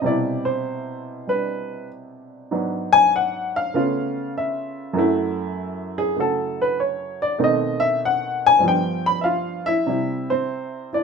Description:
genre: solo jazz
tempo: 98 BPM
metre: 4/4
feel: swing 69% on 8ths, rubato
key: unclear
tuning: A4 = 440 Hz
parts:
  - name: clear upright piano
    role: solo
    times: 0.0-11.0 s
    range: F#2 to B5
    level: -19 LUFS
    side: left 1 dB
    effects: none
room: light reverb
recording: minimal, uncompressed stereo recording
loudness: -19 LUFS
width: side -5 dB against mid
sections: 0.0-9.9 A section; 9.9-11.0 B section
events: upright piano solo 0.0-9.9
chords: 0.0 Cmaj7; 2.5 G#m7b5; 3.7 C#7alt; 5.0 F#m7; 7.4 B7b9; 8.6 G7; 9.9 C

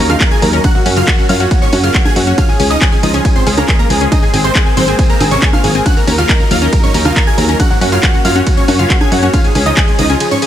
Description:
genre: uplifting trance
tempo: 138 BPM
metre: 4/4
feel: straight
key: Db major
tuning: A4 = 440 Hz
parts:
  - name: supersaw chords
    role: melody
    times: 0.0-10.5 s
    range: Bb3 to Ab5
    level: -17 LUFS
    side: right 1 dB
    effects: sidechain pumping, ping-pong delay
  - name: wide unison pluck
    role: second line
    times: 0.0-10.5 s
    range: Gb5 to Ab6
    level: -20 LUFS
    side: right 1 dB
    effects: sidechain pumping, digital delay
  - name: lush unison pad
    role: sustained chords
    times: 0.0-10.5 s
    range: F3 to Eb4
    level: -20 LUFS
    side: left 1 dB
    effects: chorus, vintage 12-bit sampler grit, sidechain pumping
  - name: solid FM bass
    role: bass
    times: 0.0-10.2 s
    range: Ab1 to Gb2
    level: -15 LUFS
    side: equal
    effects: sidechain pumping
  - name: analog pluck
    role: arpeggios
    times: 0.1-10.4 s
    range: Ab2 to Db4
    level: -21 LUFS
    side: left 3 dB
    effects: chorus, sidechain pumping, digital delay
  - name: punchy analog drum machine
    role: drums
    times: 0.1-10.5 s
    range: congas, handclaps, hi-hat, ride cymbal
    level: -18 LUFS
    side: right 1 dB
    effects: none
  - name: electronic kick drum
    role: drums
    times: 0.2-9.9 s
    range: none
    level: -13 LUFS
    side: equal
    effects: overdrive
room: little or no reverb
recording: none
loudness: -9 LUFS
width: side -11 dB against mid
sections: 0.0-10.5 A section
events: none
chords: 0.0 Ebm; 0.6 Gb; 2.4 Db; 4.1 Abadd9; 5.9 Ebm; 7.6 Gb; 9.3 Db

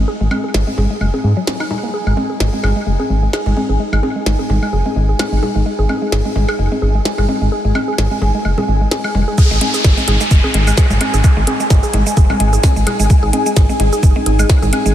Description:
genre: minimal techno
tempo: 129 BPM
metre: 4/4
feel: swing 55% on 16ths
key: unclear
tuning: A4 = 440 Hz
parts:
  - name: rubbery square bass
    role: bass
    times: 0.0-14.9 s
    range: F#1 to G#2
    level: -16 LUFS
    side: equal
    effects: tube saturation, sidechain pumping
  - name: warbly tape-like pad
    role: texture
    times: 0.0-14.9 s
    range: D#4 to G#5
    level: -22 LUFS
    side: equal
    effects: chorus, built-in reverb, phaser, sidechain pumping
  - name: mallet-like synth pluck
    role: riff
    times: 0.1-14.9 s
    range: F#3 to G#4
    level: -22 LUFS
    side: equal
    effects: chorus, sidechain pumping, analog delay
  - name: congas and woodblock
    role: percussion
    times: 0.3-14.8 s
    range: none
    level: -23 LUFS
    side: left 1 dB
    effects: analog delay
  - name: minimal click drum kit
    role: drums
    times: 0.5-14.9 s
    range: cabasa, hi-hat, snare drum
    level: -24 LUFS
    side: right 1 dB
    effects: none
  - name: electronic kick drum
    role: drums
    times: 9.4-14.6 s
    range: none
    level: -11 LUFS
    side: equal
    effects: none
  - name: downlifter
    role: sound effects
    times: 9.4-13.1 s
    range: none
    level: -22 LUFS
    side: equal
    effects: none
room: light reverb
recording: none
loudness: -12 LUFS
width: side -11 dB against mid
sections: 0.0-9.4 A section; 9.4-14.9 B section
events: drop 9.4-14.9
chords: 0.0 G#5

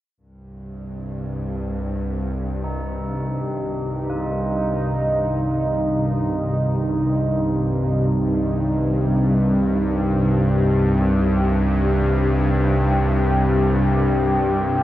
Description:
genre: ambient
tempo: free time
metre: none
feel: none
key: C minor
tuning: A4 = 440 Hz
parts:
  - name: sweeping resonant pad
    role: sustained chords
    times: 0.2-14.8 s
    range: C3 to G4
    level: -21 LUFS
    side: equal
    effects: chorus
  - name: bowed-like drone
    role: drone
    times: 0.5-14.8 s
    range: C2 to G2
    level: -22 LUFS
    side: equal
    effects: built-in reverb
  - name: tubular bells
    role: arpeggios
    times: 2.6-14.8 s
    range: Eb4 to F4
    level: -37 LUFS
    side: right 1 dB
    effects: diffuse ambient delay
room: wet cathedral reverb, RT60 5.6 s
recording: worn, warbling old tape, cassette tape, warbly pitch drift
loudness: -18 LUFS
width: side -14 dB against mid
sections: 0.2-14.8 A section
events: fade-in on tubular bells 0.2-14.8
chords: 0.2 Cm

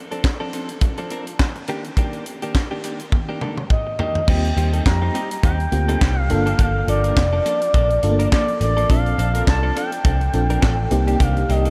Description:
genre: early-eighties boogie funk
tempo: 104 BPM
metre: 4/4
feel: swing 56% on 16ths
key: unclear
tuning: A4 = 442 Hz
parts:
  - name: direct-recorded clean electric guitar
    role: riff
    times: 0.1-11.7 s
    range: Eb3 to Bb4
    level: -31 LUFS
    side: equal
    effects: subtle chorus
  - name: tight funk drum kit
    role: drums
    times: 0.1-11.7 s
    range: crash cymbal, handclaps, hi-hat, kick drum, snare drum, toms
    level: -23 LUFS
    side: equal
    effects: none
  - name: expressive synth lead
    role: melody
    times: 3.7-11.7 s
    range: D5 to Bb5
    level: -25 LUFS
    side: equal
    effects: chorus, diffuse ambient delay
  - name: FM electric piano with tremolo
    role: accompaniment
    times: 4.3-11.7 s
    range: A3 to A4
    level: -28 LUFS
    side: equal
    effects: none
  - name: vintage muted picked electric bass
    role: bass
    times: 4.3-11.7 s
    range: F1 to F2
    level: -22 LUFS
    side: equal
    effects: none
room: moderate huge ambient reverb, RT60 6.5 s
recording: dreamy mix soaked in reverb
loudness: -20 LUFS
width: mono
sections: 0.0-4.3 A section; 4.3-11.7 B section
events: drum fill 3.1-4.3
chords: 0.0 Bbmaj9 (rootless); 1.7 Ebmaj7; 4.3 Eb6; 6.3 Gm9; 8.9 Bbmaj9; 10.9 Cm9

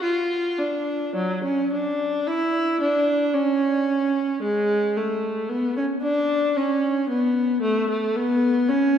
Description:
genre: classical, baroque-style suite movement for unaccompanied viola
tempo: 56 BPM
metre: 3/4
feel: rubato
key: unclear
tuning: A4 = 440 Hz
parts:
  - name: warm viola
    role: solo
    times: 0.0-9.0 s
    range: F#3 to E#4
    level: -20 LUFS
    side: equal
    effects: none
room: wet concert hall reverb, RT60 2.2 s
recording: heard from further back in the room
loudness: -20 LUFS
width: side -8 dB against mid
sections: 0.0-9.0 A section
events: none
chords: none

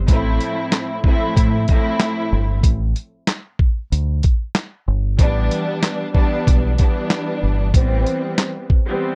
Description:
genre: hip hop, boom-bap hip-hop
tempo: 94 BPM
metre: 4/4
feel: swing 58% on 16ths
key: unclear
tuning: A4 = 440 Hz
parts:
  - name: deep dub fingered electric bass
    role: bass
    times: 0.0-8.0 s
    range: G1 to A2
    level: -21 LUFS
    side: equal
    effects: none
  - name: warm studio string section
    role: accompaniment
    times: 0.1-9.2 s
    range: A2 to E4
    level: -24 LUFS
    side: equal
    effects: cassette tape, high-pass filter, low-pass filter
  - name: dusty soul sampler-style drum kit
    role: drums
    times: 0.1-8.9 s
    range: handclaps, hi-hat, kick drum, snare drum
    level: -18 LUFS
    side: equal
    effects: none
room: little or no reverb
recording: dark, warm production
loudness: -19 LUFS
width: mono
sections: 0.0-9.2 A section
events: break 2.6-5.2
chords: 0.1 G9sus4 (rootless); 2.6 G5/A; 5.2 Em7/A; 7.7 Am7

